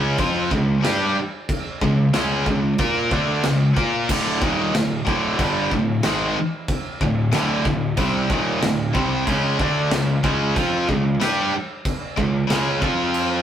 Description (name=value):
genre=heavy metal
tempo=93 BPM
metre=4/4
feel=straight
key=unclear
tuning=A4 = 440 Hz
part: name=heavy high-gain guitar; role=riff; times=0.0-13.4 s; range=D2 to Bb4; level=-23 LUFS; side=left 3 dB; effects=distortion
part: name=tight distorted guitar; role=riff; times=0.0-13.4 s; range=D2 to Bb4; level=-23 LUFS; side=right 3 dB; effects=distortion
part: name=fuzz picked electric bass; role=bass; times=0.0-13.4 s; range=D1 to Bb2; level=-26 LUFS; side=equal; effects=overdrive
part: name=big rock drum kit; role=drums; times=0.2-13.3 s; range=china cymbal, crash cymbal, kick drum, snare drum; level=-25 LUFS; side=equal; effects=none
room=moderate stone room reverb, RT60 1.1 s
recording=rough rehearsal-room recording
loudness=-18 LUFS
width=side -10 dB against mid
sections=0.0-13.4 A section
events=none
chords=0.0 C#5; 4.1 D5; 9.3 C#5; 12.8 F5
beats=0.19 0.84 | 1.49 2.14 2.79 3.44 | 4.09 4.74 5.39 6.04 | 6.68 7.33 7.98 8.62 | 9.27 9.91 10.56 11.20 | 11.85 12.49 13.14